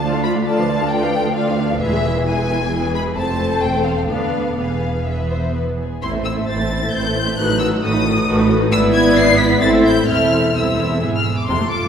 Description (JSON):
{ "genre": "quick classical-period movement for string orchestra", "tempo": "132 BPM", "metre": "3/4", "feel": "rubato", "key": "A minor", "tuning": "A4 = 439 Hz", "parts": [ { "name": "rich studio violin section", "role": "melody", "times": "0.0-11.9 s", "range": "E5 to C7", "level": "-22 LUFS", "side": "left 4 dB", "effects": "none" }, { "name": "warm studio violin section", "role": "second line", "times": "0.0-11.9 s", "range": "F4 to A5", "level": "-22 LUFS", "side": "left 2 dB", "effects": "none" }, { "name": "warm studio viola section", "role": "accompaniment", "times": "0.0-11.9 s", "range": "C3 to G#4", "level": "-21 LUFS", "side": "equal", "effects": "none" }, { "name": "warm studio cello section", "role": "bass", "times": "0.0-11.9 s", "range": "C2 to A2", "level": "-22 LUFS", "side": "right 2 dB", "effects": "none" }, { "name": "warm studio double bass section", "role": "bass", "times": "0.0-11.5 s", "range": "E1 to D2", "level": "-24 LUFS", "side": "right 2 dB", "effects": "none" } ], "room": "wet scoring stage reverb, RT60 2.0 s", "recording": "heard from further back in the room", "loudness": "-15 LUFS", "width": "side -8 dB against mid", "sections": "0.0-6.0 A section; 6.0-11.9 B section", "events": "none", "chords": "0.5 Bm7b5/D; 1.8 E; 3.2 F; 4.1 Bm7b5/D; 4.6 E; 6.0 Am; 7.4 B7/A; 8.7 E7/G#; 9.6 Am; 10.1 Am/E; 11.0 E" }